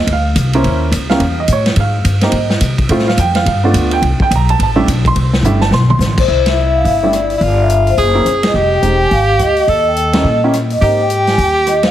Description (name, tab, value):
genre	jazz, small-group swing and bop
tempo	212 BPM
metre	4/4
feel	swing 61% on 8ths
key	unclear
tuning	A4 = 439 Hz
part	warm baby grand piano	accompaniment	0.0-11.0 s	G3 to C6	-16 LUFS	right 2 dB	none
part	upright bass	bass	0.0-11.9 s	E1 to C3	-15 LUFS	equal	none
part	vintage drum kit	drums	0.1-11.9 s	crash cymbal, hi-hat, kick drum, ride cymbal, rim click, snare drum, toms	-18 LUFS	equal	none
part	vibraphone with soft mallets	melody	6.2-11.9 s	C5 to Ab5	-15 LUFS	left 3 dB	none
part	breathy tenor saxophone	second line	6.3-11.9 s	E4 to A4	-16 LUFS	right 2 dB	none
room	light reverb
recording	heavily compressed radio sound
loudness	-10 LUFS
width	side -12 dB against mid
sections	0.0-6.3 A section; 6.3-11.9 B section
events	drum fill 5.4-6.0; band accent 6.4, 8.4, 10.1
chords	0.0 F7(no3); 0.6 Eb7(no3); 1.8 Abmaj7; 2.9 Fmaj9; 3.5 G7; 4.0 C5; 6.3 Cadd9; 7.4 Dmadd9/G; 8.0 F#7#11; 8.5 Fm9; 9.7 Eb7b9; 10.8 Abmaj9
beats	0.08 0.36 | 0.64 0.92 1.21 1.49 | 1.77 2.05 2.33 2.62 | 2.90 3.18 3.46 3.74 | 4.03 4.31 4.59 4.87 | 5.16 5.44 5.72 6.00 | 6.29 6.57 6.85 7.13 | 7.42 7.70 7.98 8.26 | 8.55 8.83 9.11 9.40 | 9.68 9.96 10.24 10.53 | 10.81 11.09 11.38 11.66